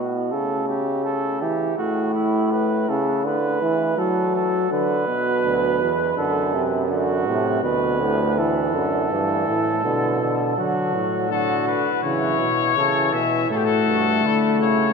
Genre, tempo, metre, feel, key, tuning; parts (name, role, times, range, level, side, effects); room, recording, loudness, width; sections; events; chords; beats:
classical, imitative canzona for brass ensemble; 82 BPM; 4/4; straight; A4 = 437 Hz
clear euphonium; accompaniment; 0.0-14.9 s; A2 to A3; -22 LUFS; equal
warm flugelhorn; second line; 0.3-14.9 s; E4 to B4; -24 LUFS; right 4 dB
bright bass trombone; bass; 5.4-14.9 s; D2 to D3; -25 LUFS; right 2 dB
clear trumpet; melody; 11.3-14.9 s; G4 to E5; -21 LUFS; left 10 dB
wet cathedral reverb, RT60 5.4 s; -19 LUFS; side -5 dB against mid
0.0-14.9 A section
0.3 A/C#; 1.8 A; 3.3 D; 4.7 Bmadd11; 6.2 D/F#; 7.6 D; 9.1 G; 10.6 D; 12.0 A
0.31 1.05 | 1.79 2.52 3.25 3.98 | 4.72 5.45 6.18 6.91 | 7.64 8.38 9.12 9.85 | 10.58 11.31 12.04 12.78 | 13.52 14.26